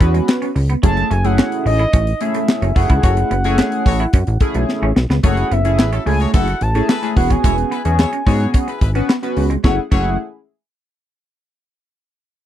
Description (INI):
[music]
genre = early-eighties boogie funk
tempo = 109 BPM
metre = 4/4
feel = straight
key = F# minor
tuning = A4 = 441 Hz
[part]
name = mellow horn-like synth lead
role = melody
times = 0.0-10.2 s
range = D#5 to B5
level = -22 LUFS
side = right 1 dB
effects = chorus, phaser, slapback echo
[part]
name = chorused polysynth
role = accompaniment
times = 0.0-10.2 s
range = A3 to B4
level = -21 LUFS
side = left 1 dB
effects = phaser
[part]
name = clean electric guitar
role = riff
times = 0.0-10.1 s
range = F#3 to F#4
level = -26 LUFS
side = right 5 dB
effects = lush chorus
[part]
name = plucky analog bass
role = bass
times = 0.0-10.2 s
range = E1 to G#2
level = -17 LUFS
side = equal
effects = none
[part]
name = tight funk drum kit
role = drums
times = 0.0-10.0 s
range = crash cymbal, handclaps, hi-hat, kick drum, snare drum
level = -14 LUFS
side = equal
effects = none
[part]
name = clear horn section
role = second line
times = 3.0-10.1 s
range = A3 to C#5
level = -26 LUFS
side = left 4 dB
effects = none
[sound]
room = little or no reverb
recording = dry, close 1970s-style studio recording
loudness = -14 LUFS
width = side -11 dB against mid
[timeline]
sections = 0.0-5.2 A section; 5.2-9.6 B section; 9.6-11.8 C section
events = band accent 3.0-5.2; drum fill 4.7-5.2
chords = 0.0 E5; 0.8 F#m7; 7.2 E6; 9.6 F#m7